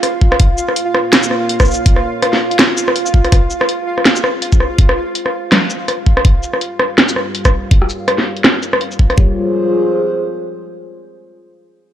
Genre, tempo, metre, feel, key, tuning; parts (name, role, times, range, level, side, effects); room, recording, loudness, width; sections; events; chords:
half-time drum and bass; 164 BPM; 4/4; swing 57% on 16ths, half-time; F minor; A4 = 441 Hz
dark analog pad; sustained chords; 0.0-10.6 s; G3 to F5; -22 LUFS; left 1 dB; chorus, vintage 12-bit sampler grit, sidechain pumping
drum and bass drum kit; drums; 0.0-9.2 s; hi-hat, rim click, shaker, snare drum; -13 LUFS; equal; low-pass filter on hats, low-pass filter on perc, low-pass filter on snare, low-pass filter on room
pulsing gated texture; texture; 0.0-9.2 s; F4 to F5; -21 LUFS; right 2 dB; chorus, built-in reverb
electronic kick drum; drums; 0.2-9.3 s; -11 LUFS; equal
light reverb; -11 LUFS; side -11 dB against mid
0.0-9.2 A section; 9.2-10.6 B section
filter sweep on analog synth pad 0.0-9.2
0.4 Bbm; 3.3 Fm; 6.2 Gdim; 9.2 Fm